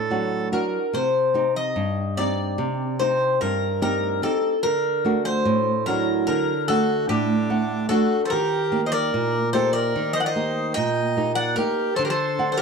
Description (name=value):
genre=greek folk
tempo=147 BPM (eighths)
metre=9/8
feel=straight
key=unclear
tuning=A4 = 440 Hz
part: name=Greek bouzouki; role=melody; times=0.0-12.6 s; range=G4 to G5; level=-23 LUFS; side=left 2 dB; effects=none
part: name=accordion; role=second line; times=0.0-0.5, 6.7-12.6 s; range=D4 to Eb5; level=-27 LUFS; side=right 3 dB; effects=none
part: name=flamenco guitar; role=accompaniment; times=0.0-12.6 s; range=G2 to F#5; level=-24 LUFS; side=right 2 dB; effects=none
room=moderate studio reverb, RT60 0.6 s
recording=dark, warm production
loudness=-20 LUFS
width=side -5 dB against mid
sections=0.9-12.6 A section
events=none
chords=0.0 D; 0.9 Cm; 4.6 D; 8.3 Eb; 12.0 D